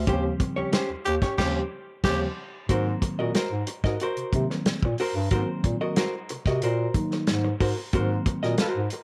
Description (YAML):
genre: funk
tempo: 92 BPM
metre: 4/4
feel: straight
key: unclear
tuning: A4 = 440 Hz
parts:
  - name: mellow bass clarinet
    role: bass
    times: 0.0-8.9 s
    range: Eb2 to C3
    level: -30 LUFS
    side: equal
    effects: none
  - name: vintage hollow-body jazz guitar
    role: accompaniment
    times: 0.1-9.0 s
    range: Db4 to Eb5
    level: -32 LUFS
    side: equal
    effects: none
  - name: mellow tine electric piano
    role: stabs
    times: 0.1-8.6 s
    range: Db3 to Eb4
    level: -34 LUFS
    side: equal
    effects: slapback echo
  - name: warm soul drum kit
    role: drums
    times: 0.1-9.0 s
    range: crash cymbal, hi-hat, kick drum, snare drum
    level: -29 LUFS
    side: equal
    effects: none
  - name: growling tenor saxophone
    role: second line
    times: 1.1-2.2 s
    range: G4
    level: -32 LUFS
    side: equal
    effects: none
room: moderate spring reverb, RT60 1.4 s, small room reverb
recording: none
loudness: -26 LUFS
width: mono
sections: 0.0-2.7 A section; 2.7-9.0 B section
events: band accent 0.1-2.7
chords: 0.0 Eb13; 2.7 Ab9